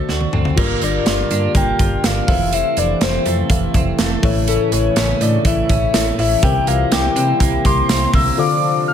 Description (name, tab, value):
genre	1980s-style pop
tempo	123 BPM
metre	4/4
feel	straight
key	unclear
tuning	A4 = 444 Hz
part	soft octave-layered synth lead	melody	0.0-8.9 s	A4 to F6	-20 LUFS	left 2 dB	chorus, ping-pong delay
part	mellow FM electric piano	accompaniment	0.0-8.9 s	G2 to F5	-23 LUFS	left 6 dB	chorus
part	twelve-string electric guitar	riff	0.0-8.9 s	E3 to G4	-25 LUFS	right 6 dB	lush chorus
part	slap-like FM bass	bass	0.1-8.3 s	F1 to C3	-21 LUFS	equal	none
part	modern studio drum kit	drums	0.1-8.3 s	crash cymbal, hi-hat, kick drum, snare drum, tambourine, toms	-19 LUFS	right 1 dB	gated reverb
part	warm analog pad	sustained chords	0.6-8.9 s	C3 to F4	-25 LUFS	left 1 dB	chorus
room	light reverb, studio reverb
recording	none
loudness	-14 LUFS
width	side -9 dB against mid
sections	0.6-8.4 A section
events	drum fill 0.1-0.6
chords	0.0 D7; 0.6 Gm7; 2.3 Fmaj7; 4.2 A; 6.4 C7; 8.4 Dm7